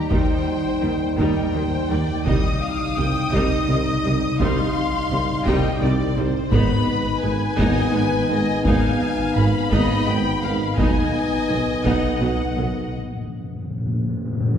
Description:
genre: cinematic, epic orchestral film score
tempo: 56 BPM (dotted quarters)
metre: 6/8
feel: straight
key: unclear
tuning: A4 = 440 Hz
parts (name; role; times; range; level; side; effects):
- warm symphonic violin section; melody; 0.0-12.9 s; F#5 to Eb6; -27 LUFS; left 4 dB; none
- clear symphonic violin section; second line; 0.0-12.9 s; G4 to G5; -30 LUFS; left 1 dB; none
- mellow French horn section; sustained chords; 0.0-12.9 s; G3 to Eb4; -26 LUFS; left 1 dB; none
- warm symphonic viola section; accompaniment; 0.1-12.7 s; C3 to Eb4; -27 LUFS; right 1 dB; none
- mellow tuba; bass; 0.1-12.7 s; Ab1 to Eb2; -26 LUFS; right 1 dB; none
- rich symphonic cello section; bass; 0.1-12.7 s; Ab2 to Eb3; -28 LUFS; right 2 dB; none
- rich symphonic double bass section; bass; 0.1-12.7 s; Ab1 to Eb2; -27 LUFS; right 1 dB; none
- taiko ensemble; drums; 0.1-12.5 s; none; -27 LUFS; equal; none
- timpani; percussion; 12.9-14.6 s; Bb2; -23 LUFS; left 1 dB; none
room: wet concert hall reverb, RT60 2.2 s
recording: heard from further back in the room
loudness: -18 LUFS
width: side -8 dB against mid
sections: 0.0-14.6 A section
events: break 12.9-14.6; timpani fill 12.9-14.6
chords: 0.0 Eb; 2.3 Cm; 6.5 Abm; 10.8 B; 12.9 N.C.

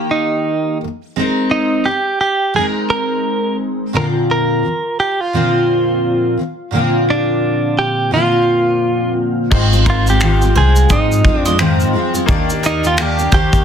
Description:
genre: acoustic pop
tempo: 86 BPM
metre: 4/4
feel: swing 60% on 16ths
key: unclear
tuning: A4 = 440 Hz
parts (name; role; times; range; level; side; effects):
- picked steel-string acoustic guitar; accompaniment; 0.0-13.6 s; Ab2 to Bb4; -16 LUFS; left 1 dB; double-tracked left and right, plate reverb
- direct-recorded clean electric guitar; melody; 0.1-13.6 s; D4 to Bb4; -17 LUFS; right 2 dB; plate reverb
- bright upright piano; accompaniment; 9.5-13.6 s; Ab3 to D5; -27 LUFS; left 6 dB; plate reverb
- upright bass; bass; 9.5-13.6 s; Ab1 to Ab2; -15 LUFS; equal; none
- modern studio drum kit; drums; 9.5-13.6 s; crash cymbal, finger snaps, kick drum, shaker; -17 LUFS; equal; none
- bowl-back mandolin; arpeggios; 9.9-13.5 s; Bb4 to Eb5; -23 LUFS; right 3 dB; plate reverb
room: light reverb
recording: dense, heavily limited modern master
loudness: -13 LUFS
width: side -8 dB against mid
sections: 0.0-9.5 A section; 9.5-13.6 B section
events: none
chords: 0.0 Eb; 1.2 Abadd9; 4.0 Bbadd9; 9.5 Ab6; 12.3 Ebmaj7

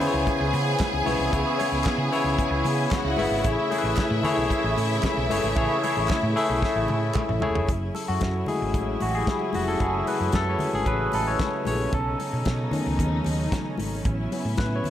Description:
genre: disco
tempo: 113 BPM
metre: 4/4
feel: straight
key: unclear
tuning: A4 = 440 Hz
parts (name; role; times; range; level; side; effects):
- clear studio string section; second line; 0.0-7.6 s; E4 to G#5; -29 LUFS; right 1 dB; none
- barky tine electric piano; accompaniment; 0.0-14.9 s; C#3 to E5; -26 LUFS; left 2 dB; phaser
- dark studio string section; sustained chords; 0.0-14.9 s; C#3 to G#4; -30 LUFS; equal; none
- damped 70s drum kit; drums; 0.0-14.9 s; hi-hat, kick drum, snare drum, toms; -30 LUFS; equal; none
- congas; percussion; 0.0-14.9 s; none; -36 LUFS; left 5 dB; none
- hollow-body short-scale fingered electric bass; bass; 0.1-14.8 s; E1 to C#3; -28 LUFS; equal; none
- group handclap; percussion; 0.8-7.3 s; none; -38 LUFS; right 6 dB; none
room: light reverb, small room ambience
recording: none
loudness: -22 LUFS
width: side -11 dB against mid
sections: 0.0-7.7 A section; 7.7-14.9 B section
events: drum fill 6.6-7.7; tine electric piano solo 7.7-14.9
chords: 0.0 C#m7; 3.5 Amaj7; 7.7 F#m9; 11.9 B9; 14.1 A69

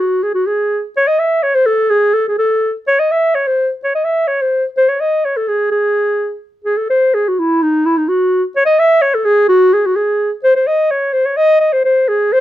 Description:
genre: balkan folk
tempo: 127 BPM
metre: 2/4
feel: straight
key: G# phrygian dominant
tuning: A4 = 439 Hz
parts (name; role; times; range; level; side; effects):
- dark clarinet; solo; 0.0-12.4 s; D#4 to E5; -12 LUFS; equal; none
room: light reverb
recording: close, detailed microphones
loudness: -12 LUFS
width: side -13 dB against mid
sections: 0.0-6.7 A section; 6.7-12.4 A section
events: none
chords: none

